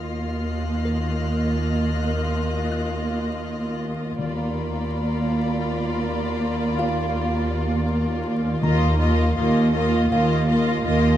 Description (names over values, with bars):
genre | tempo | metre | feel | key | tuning
cinematic, suspense film score | 81 BPM | 3/4 | straight | Eb harmonic minor | A4 = 440 Hz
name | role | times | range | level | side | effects
rich studio violin section | melody | 0.0-11.2 s | D5 to Eb5 | -33 LUFS | left 3 dB | none
warm studio violin section | second line | 0.0-11.2 s | F4 | -29 LUFS | left 1 dB | none
rich studio viola section | accompaniment | 0.0-11.2 s | Bb3 | -27 LUFS | equal | none
clear studio double bass section | bass | 0.0-11.2 s | Eb2 | -25 LUFS | right 1 dB | none
rich studio cello section | bass | 0.0-11.2 s | Eb2 | -26 LUFS | right 1 dB | none
rich studio violin section | texture | 0.0-8.2 s | Bb5 to C7 | -38 LUFS | left 7 dB | none
music box | texture | 0.9-11.2 s | F4 to Gb6 | -32 LUFS | right 1 dB | none
timpani | percussion | 4.2-5.3, 8.6-9.7 s | Eb3 | -28 LUFS | left 1 dB | none
room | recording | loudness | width
moderate scoring stage reverb, RT60 1.8 s | dark, warm production, vinyl crackle | -20 LUFS | side -11 dB against mid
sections
0.0-11.2 A section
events
none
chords
0.0 Ebsus2